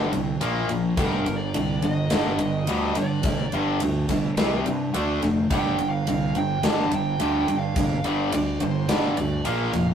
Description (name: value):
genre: hard rock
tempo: 106 BPM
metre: 4/4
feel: straight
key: G minor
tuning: A4 = 440 Hz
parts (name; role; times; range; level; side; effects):
- overdriven electric guitar; riff; 0.0-9.9 s; G2 to D4; -26 LUFS; equal; spring reverb
- overdriven semi-hollow guitar; riff; 0.0-9.9 s; G2 to D4; -28 LUFS; right 2 dB; none
- fuzz fingered electric bass; bass; 0.0-9.9 s; F1 to G2; -28 LUFS; left 1 dB; overdrive
- gated 80s drum kit; drums; 0.1-9.9 s; kick drum, ride cymbal, snare drum; -29 LUFS; equal; none
- dark smooth lead guitar; melody; 1.0-9.8 s; Bb4 to A5; -30 LUFS; right 3 dB; overdrive
room: moderate studio reverb, RT60 0.6 s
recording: rough rehearsal-room recording, tube saturation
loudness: -21 LUFS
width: side -8 dB against mid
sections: 0.0-9.9 A section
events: none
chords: 0.4 Bb5; 1.0 G5; 4.4 C5; 4.9 D5; 5.5 G5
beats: 0.41 | 0.98 1.54 2.11 2.68 | 3.24 3.81 4.38 4.94 | 5.51 6.07 6.63 7.20 | 7.76 8.33 8.89 9.46